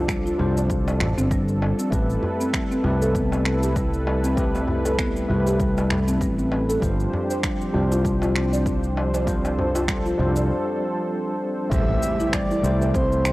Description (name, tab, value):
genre	organic downtempo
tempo	98 BPM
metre	4/4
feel	swing 56% on 16ths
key	A minor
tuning	A4 = 440 Hz
part	overdriven tine electric piano	accompaniment	0.0-13.3 s	G3 to C5	-28 LUFS	left 1 dB	fast tremolo, sidechain pumping, analog delay
part	warm analog pad	sustained chords	0.0-13.3 s	E3 to C5	-29 LUFS	right 1 dB	chorus, sidechain pumping
part	buzzing marimba with soft mallets	arpeggios	0.0-13.1 s	G3 to D5	-27 LUFS	equal	analog delay
part	fretless electric bass	bass	0.0-13.3 s	G1 to C2	-23 LUFS	equal	sidechain pumping
part	electronic finger snaps and cabasa	drums	0.1-13.3 s	none	-30 LUFS	equal	overdrive
part	electronic kick drum	drums	0.1-13.1 s	none	-27 LUFS	equal	overdrive
part	darbuka	percussion	0.4-10.5 s	none	-32 LUFS	equal	none
part	breathy flute-like synth lead	melody	11.7-13.3 s	C5 to E5	-25 LUFS	equal	lush chorus
part	impact	sound effects	11.7-13.3 s	none	-30 LUFS	equal	none
room	light reverb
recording	dry, gritty hardware recording, transformer saturation, cassette tape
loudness	-20 LUFS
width	side -19 dB against mid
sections	0.0-11.7 A section; 11.7-13.3 B section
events	break 10.5-11.7; impact 11.7-13.3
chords	0.0 G7sus4; 1.9 Am9; 6.8 G7sus4; 11.7 Am7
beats	0.09 0.70 1.31 | 1.93 2.54 3.15 3.76 | 4.37 4.99 5.60 6.21 | 6.82 7.43 8.05 8.66 | 9.27 9.88 10.50 11.11 | 11.72 12.33 12.95